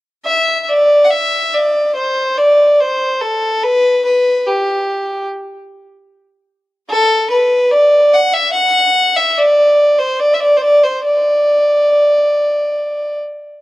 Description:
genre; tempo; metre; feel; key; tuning
celtic folk; 72 BPM; 4/4; uneven beats, rubato; unclear; A4 = 440 Hz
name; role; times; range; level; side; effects
warm fiddle; solo; 0.3-13.2 s; G4 to F#5; -11 LUFS; equal; slapback echo
room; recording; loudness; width
little or no reverb; recorded outdoors, with no room sound; -11 LUFS; side -17 dB against mid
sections
0.2-13.6 A section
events
none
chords
none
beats
| 0.24 1.11 1.96 2.80 | 3.63 4.46 5.26 6.07 | 6.89 7.71 8.53 9.36 | 10.19 11.03 11.89 12.78

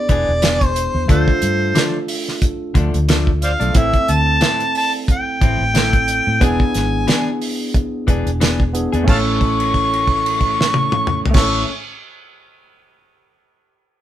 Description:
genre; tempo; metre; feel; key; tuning
straight-eighth soul blues; 90 BPM; 4/4; swing 56% on 16ths; unclear; A4 = 440 Hz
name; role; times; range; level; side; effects
warm harmonica; melody; 0.0-11.6 s; C5 to C#6; -19 LUFS; equal; overdrive
barky tine electric piano; accompaniment; 0.0-11.6 s; A3 to A4; -23 LUFS; right 3 dB; overdrive
direct-recorded clean electric guitar; stabs; 0.1-11.7 s; A2 to G#4; -24 LUFS; left 4 dB; none
vintage muted fingered electric bass; bass; 0.1-11.6 s; E1 to A2; -20 LUFS; equal; none
damped 70s drum kit; drums; 0.1-11.5 s; crash cymbal, hi-hat, kick drum, snare drum, toms; -18 LUFS; equal; none
room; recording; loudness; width
moderate studio reverb, RT60 0.7 s; band playing live in one room; -14 LUFS; side -12 dB against mid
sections
0.0-9.1 A section; 9.1-11.7 B section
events
held note 9.1-11.3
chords
0.0 E7; 1.1 Dm; 3.8 Am; 6.4 E7; 9.1 A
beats
0.42 | 1.09 1.76 2.42 3.09 | 3.75 4.42 5.08 5.75 | 6.41 7.08 7.75 8.41 | 9.08 9.74 10.41 11.07

